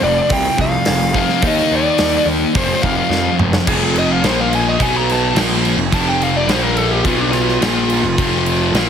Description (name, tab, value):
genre	hard rock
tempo	107 BPM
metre	4/4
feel	straight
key	unclear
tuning	A4 = 443 Hz
part	biting lead guitar	melody	0.0-8.9 s	D4 to Bb5	-19 LUFS	left 2 dB	overdrive
part	overdriven semi-hollow guitar	riff	0.0-8.9 s	F2 to Eb4	-21 LUFS	right 14 dB	none
part	sludgy distorted guitar	riff	0.0-8.9 s	F2 to Eb4	-19 LUFS	left 11 dB	overdrive
part	fuzz picked electric bass	bass	0.0-8.9 s	F1 to F2	-21 LUFS	right 1 dB	overdrive
part	big rock drum kit	drums	0.3-8.9 s	crash cymbal, hi-hat, kick drum, snare drum, toms	-20 LUFS	right 1 dB	none
room	light reverb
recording	heavily compressed radio sound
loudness	-13 LUFS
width	side -8 dB against mid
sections	0.0-3.7 A section; 3.7-8.9 B section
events	drum fill 3.1-3.7; lead electric guitar solo 3.7-8.9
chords	0.0 F5; 1.4 Eb5; 2.5 F5; 4.2 Bb5; 4.8 B5; 5.4 F5; 6.5 Bb5; 7.0 B5; 7.6 F5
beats	0.30 0.87 | 1.43 1.99 2.55 3.11 | 3.67 4.23 4.79 5.36 | 5.92 6.48 7.05 7.61 | 8.17 8.74